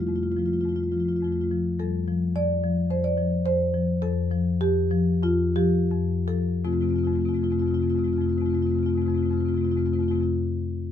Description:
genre	classical, contemporary piece for solo marimba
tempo	80-110 BPM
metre	4/4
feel	rubato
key	F major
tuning	A4 = 440 Hz
part	marimba with soft mallets	solo	0.0-10.3 s	F2 to D5	-22 LUFS	left 2 dB	none
room	light reverb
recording	minimal, uncompressed stereo recording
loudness	-22 LUFS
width	side -9 dB against mid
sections	0.0-1.8 A section; 1.8-6.6 B section; 6.6-10.9 C section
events	slowing down 0.7-6.6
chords	0.0 F; 1.8 Fadd9; 6.6 F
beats	0.08 0.65 1.23 | 1.81 2.36 2.91 3.46 | 4.02 4.61 5.22 5.91 | 6.64 7.34 8.04 8.76 | 9.46 10.16

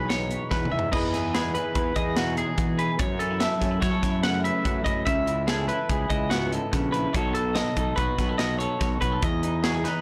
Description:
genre	math rock and midwest emo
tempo	145 BPM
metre	5/4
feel	straight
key	E major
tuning	A4 = 440 Hz
part	clean electric guitar	accompaniment	0.0-10.0 s	E2 to B4	-32 LUFS	equal	none
part	twelve-string electric guitar	arpeggios	0.0-10.0 s	F#4 to F#5	-31 LUFS	equal	analog delay
part	fuzz fingered electric bass	bass	0.0-9.9 s	A#1 to E3	-32 LUFS	equal	overdrive
part	crisp fusion drum kit	drums	0.1-9.9 s	crash cymbal, hi-hat, kick drum, snare drum, toms	-31 LUFS	equal	none
room	light reverb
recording	blown-out, overdriven recording, overdrive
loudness	-25 LUFS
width	mono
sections	0.9-10.0 A section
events	drum fill 0.5-0.9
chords	0.0 Emaj7; 3.0 F#m7; 5.1 C#m7; 7.1 B9; 9.2 Emaj7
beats	0.09 0.51 | 0.92 1.33 1.75 2.16 2.57 | 2.99 3.40 3.81 4.23 4.64 | 5.06 5.47 5.89 6.30 6.72 | 7.13 7.55 7.97 8.38 8.80 | 9.22 9.64

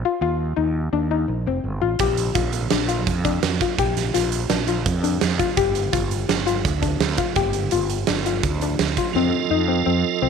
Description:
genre	progressive instrumental, band music in an uneven meter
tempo	168 BPM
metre	5/4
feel	straight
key	G minor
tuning	A4 = 442 Hz
part	fretless electric bass	bass	0.0-10.3 s	F1 to F2	-24 LUFS	right 2 dB	none
part	soft round pluck	arpeggios	0.1-10.3 s	C4 to G4	-23 LUFS	left 10 dB	chorus
part	big rock drum kit	drums	2.0-9.1 s	hi-hat, kick drum, snare drum	-23 LUFS	right 8 dB	none
part	tonewheel organ	accompaniment	9.1-10.3 s	F3 to Eb5	-22 LUFS	right 13 dB	overdrive, chorus vibrato
room	moderate plate reverb, RT60 1.8 s, studio ambience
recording	1960s-style stereo with parts hard left and right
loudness	-19 LUFS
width	side -6 dB against mid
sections	0.0-9.2 A section; 9.2-10.3 B section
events	none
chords	0.0 Eb5; 2.0 Bb; 5.6 G5; 9.2 F7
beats	| 0.22 0.58 0.94 1.29 1.65 | 2.01 2.37 2.72 3.08 3.44 | 3.79 4.15 4.51 4.87 5.22 | 5.58 5.94 6.30 6.65 7.01 | 7.37 7.73 8.08 8.44 8.80 | 9.15 9.51 9.87 10.23

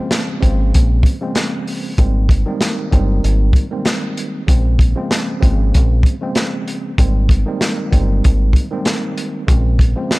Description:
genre	hip hop, boom-bap hip-hop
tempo	96 BPM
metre	4/4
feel	swing 55% on 16ths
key	Bb dorian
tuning	A4 = 435 Hz
part	mellow tine electric piano	accompaniment	0.0-10.2 s	Db3 to C4	-22 LUFS	right 1 dB	medium stereo tremolo, high-pass filter, low-pass filter
part	crunchy breakbeat drum kit	drums	0.1-10.2 s	hi-hat, kick drum, snare drum	-15 LUFS	equal	none
part	deep dub fingered electric bass	bass	0.4-9.9 s	G1 to Bb1	-15 LUFS	equal	none
room	little or no reverb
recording	dark, warm production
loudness	-13 LUFS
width	side -22 dB against mid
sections	0.0-10.2 A section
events	none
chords	0.0 Bbm9; 2.0 Abmaj9; 4.5 Bbm9; 7.0 Abmaj9; 9.5 Bbm9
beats	0.11 0.73 1.36 | 1.98 2.61 3.23 3.86 | 4.48 5.11 5.73 6.36 | 6.98 7.61 8.23 8.86 | 9.48 10.11

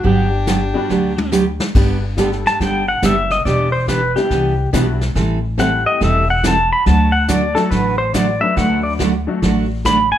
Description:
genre	country, western swing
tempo	141 BPM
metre	4/4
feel	swing 65% on 8ths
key	G major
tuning	A4 = 440 Hz
part	pedal steel guitar	melody	0.0-10.2 s	G4 to B5	-17 LUFS	left 1 dB	plate reverb
part	picked steel-string acoustic guitar	accompaniment	0.0-10.0 s	D3 to A4	-19 LUFS	right 4 dB	none
part	upright bass	bass	0.0-10.1 s	E1 to D2	-19 LUFS	equal	none
part	vintage brush drum kit	drums	0.0-10.2 s	brushed snare drum, crash cymbal, hi-hat, kick drum, snare drum, toms	-21 LUFS	left 1 dB	none
part	clear fiddle	second line	0.1-1.3 s	D4	-29 LUFS	equal	none
part	honky-tonk upright piano	accompaniment	0.7-9.4 s	F#3 to B4	-23 LUFS	left 4 dB	none
room	moderate club reverb, RT60 0.6 s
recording	none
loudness	-14 LUFS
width	side -11 dB against mid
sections	0.0-1.7 A section; 1.7-10.2 B section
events	drum fill 0.9-1.7; pedal steel guitar solo 1.7-10.2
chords	0.0 Gmaj7; 1.7 G; 3.5 Em7; 5.2 Am7; 6.9 D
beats	| 0.04 0.47 0.89 1.32 | 1.75 2.17 2.60 3.02 | 3.45 3.88 4.30 4.73 | 5.16 5.58 6.01 6.44 | 6.87 7.29 7.72 8.15 | 8.57 9.00 9.43 9.86

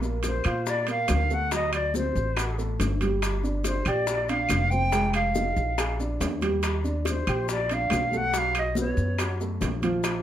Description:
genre	Afro-Cuban jazz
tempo	141 BPM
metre	4/4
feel	straight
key	unclear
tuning	A4 = 440 Hz
part	dark upright piano	accompaniment	0.0-10.2 s	F3 to Ab5	-31 LUFS	right 2 dB	none
part	upright bass	bass	0.0-10.2 s	F1 to Bb2	-28 LUFS	equal	none
part	bongos	percussion	0.0-10.2 s	none	-34 LUFS	left 6 dB	none
part	congas	percussion	0.0-10.2 s	none	-36 LUFS	left 2 dB	none
part	maracas	percussion	0.0-10.2 s	none	-40 LUFS	left 6 dB	none
part	timbales	percussion	0.2-10.2 s	none	-34 LUFS	right 5 dB	none
part	reedy silver concert flute	melody	0.3-9.4 s	C5 to G5	-27 LUFS	equal	none
part	claves	percussion	0.4-10.2 s	none	-36 LUFS	equal	none
room	moderate studio reverb, RT60 0.6 s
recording	none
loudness	-23 LUFS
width	side -11 dB against mid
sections	0.0-10.2 A section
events	none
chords	0.0 Bbmaj9; 1.5 D7; 3.2 Gm7; 4.9 Fm7; 5.8 Bb7; 6.6 Ebmaj9; 8.3 B5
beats	0.24 0.66 1.09 | 1.51 1.94 2.37 2.79 | 3.22 3.65 4.08 4.50 | 4.93 5.35 5.78 6.21 | 6.63 7.06 7.49 7.91 | 8.34 8.77 9.19 9.62 | 10.04

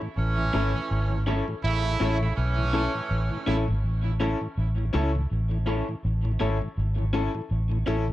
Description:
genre	reggae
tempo	82 BPM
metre	4/4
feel	swing 57% on 16ths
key	A major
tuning	A4 = 440 Hz
part	electric guitar at the edge of break-up	accompaniment	0.0-8.0 s	C#4 to C#5	-34 LUFS	right 2 dB	tape echo
part	mellow tonewheel organ	accompaniment	0.0-8.1 s	A2 to E4	-35 LUFS	left 1 dB	slow rotary speaker, tape echo
part	warm horn section	second line	0.2-3.6 s	A2 to E4	-30 LUFS	right 3 dB	tape echo
part	vintage muted fingered electric bass	bass	0.2-8.1 s	G#1 to C#2	-25 LUFS	equal	tube saturation
part	clear upright piano	stabs	0.5-8.0 s	C#4 to A4	-32 LUFS	left 7 dB	none
room	light reverb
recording	nothing above 10.6 kHz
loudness	-24 LUFS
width	side -15 dB against mid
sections	0.0-8.1 A section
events	none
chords	0.0 A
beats	0.17 0.90 | 1.63 2.37 3.10 3.83 | 4.57 5.30 6.04 6.77 | 7.50

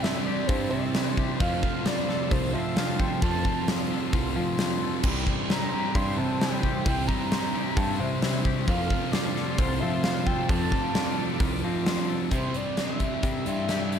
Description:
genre	rock, shoegaze and dream pop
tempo	132 BPM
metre	4/4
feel	straight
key	C major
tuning	A4 = 440 Hz
part	mellow horn-like synth lead	melody	0.0-14.0 s	C5 to C6	-33 LUFS	equal	chorus, slapback echo
part	sweeping resonant pad	sustained chords	0.0-12.3 s	E4 to D6	-38 LUFS	right 2 dB	chorus
part	twangy electric guitar	arpeggios	0.0-14.0 s	F3 to A4	-38 LUFS	left 9 dB	lush chorus, slapback echo
part	crunchy overdriven guitar	riff	0.0-14.0 s	F2 to F4	-32 LUFS	right 14 dB	reverse reverb
part	thick fuzz guitar	riff	0.0-14.0 s	F2 to C4	-32 LUFS	left 11 dB	distortion, wide subtle chorus
part	huge arena drum kit	drums	0.0-14.0 s	crash cymbal, hi-hat, kick drum, snare drum	-28 LUFS	equal	none
part	modern bright picked electric bass	bass	0.5-14.0 s	C2 to F3	-30 LUFS	equal	none
room	small room reverb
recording	none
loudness	-24 LUFS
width	side -8 dB against mid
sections	0.0-12.3 A section; 12.3-14.0 B section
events	none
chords	0.0 C; 1.4 F; 5.0 C; 8.7 F; 12.3 C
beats	0.04 0.50 0.95 | 1.41 1.86 2.31 2.77 | 3.22 3.68 4.13 4.59 | 5.04 5.50 5.95 6.41 | 6.86 7.31 7.77 8.22 | 8.68 9.13 9.59 10.04 | 10.50 10.95 11.41 11.87 | 12.32 12.78 13.24 13.70

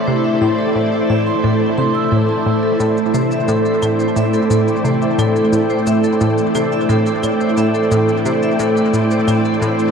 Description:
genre	ambient, sequencer-driven space music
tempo	88 BPM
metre	4/4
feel	straight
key	A minor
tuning	A4 = 440 Hz
part	string machine, full ensemble	sustained chords	0.0-9.9 s	A3 to D5	-16 LUFS	equal	ensemble chorus
part	wind-like tuned noise texture	texture	0.0-9.9 s	E5 to G5	-31 LUFS	left 4 dB	built-in reverb
part	vibraphone with medium hard mallets	arpeggios	0.1-9.8 s	A4 to E6	-21 LUFS	moving between left 3 dB and right 4 dB	auto-pan, tape echo
part	analog pluck	riff	0.1-9.8 s	A2 to C3	-19 LUFS	left 1 dB	chorus, tape echo
part	shaker and claves	percussion	2.8-9.9 s	none	-33 LUFS	left 2 dB	tape echo
room	wet huge ambient reverb, RT60 7.9 s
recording	dark, warm production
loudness	-13 LUFS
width	side -6 dB against mid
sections	0.0-9.9 A section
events	filter sweep on synth arpeggio sound 0.0-9.9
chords	0.0 Am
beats	| 0.07 0.76 1.44 2.12 | 2.80 3.48 4.17 4.85 | 5.53 6.21 6.89 7.58 | 8.26 8.94 9.62

